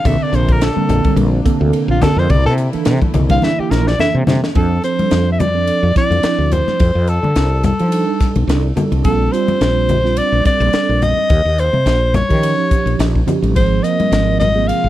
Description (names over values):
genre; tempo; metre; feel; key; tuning
electric jazz fusion; 107 BPM; 4/4; swing 55% on 16ths; F major; A4 = 440 Hz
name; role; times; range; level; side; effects
breathy soprano saxophone; melody; 0.0-14.9 s; F4 to F5; -18 LUFS; left 1 dB; none
mellow tine electric piano; accompaniment; 0.0-14.9 s; D3 to Bb4; -19 LUFS; right 6 dB; slow stereo tremolo, analog chorus
brassy analog pad; sustained chords; 0.0-4.5, 13.6-14.9 s; C3 to F4; -27 LUFS; left 3 dB; chorus
congas; percussion; 0.0-14.6 s; none; -20 LUFS; left 4 dB; none
woody fretless electric bass; bass; 0.1-14.9 s; Ab1 to F3; -16 LUFS; equal; none
crisp fusion drum kit; drums; 0.1-14.8 s; hi-hat, kick drum, ride cymbal, snare drum; -20 LUFS; equal; none
room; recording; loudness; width
small room ambience; none; -12 LUFS; side -14 dB against mid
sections
0.0-4.5 A section; 4.5-14.9 B section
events
soprano saxophone solo 0.0-4.5; drum fill 3.4-4.5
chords
0.1 Bbmaj9; 2.3 C13; 4.5 F6; 6.8 F13; 9.1 Bbmaj13; 11.3 Eb9; 13.6 Ab69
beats
| 0.05 0.61 1.18 1.74 | 2.30 2.86 3.42 3.98 | 4.55 5.11 5.67 6.24 | 6.80 7.36 7.92 8.49 | 9.05 9.61 10.18 10.74 | 11.30 11.87 12.43 13.00 | 13.56 14.13 14.69